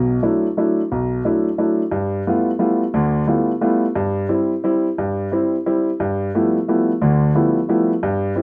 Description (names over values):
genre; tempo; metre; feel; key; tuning
jazz; 177 BPM; 3/4; swing 64% on 8ths; G mixolydian; A4 = 441 Hz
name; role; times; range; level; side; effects
clear grand piano; solo; 0.0-8.4 s; B1 to F4; -19 LUFS; equal; none
room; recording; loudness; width
moderate club reverb, RT60 0.6 s; none; -19 LUFS; mono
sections
0.0-1.9 A section; 1.9-8.4 B section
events
none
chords
0.0 E9sus4; 1.9 G13; 4.0 C/G; 6.0 G13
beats
0.23 0.57 | 0.91 1.24 1.58 | 1.92 2.26 2.60 | 2.94 3.28 3.62 | 3.96 4.30 4.63 | 4.97 5.31 5.65 | 5.99 6.33 6.67 | 7.01 7.35 7.69 | 8.03 8.37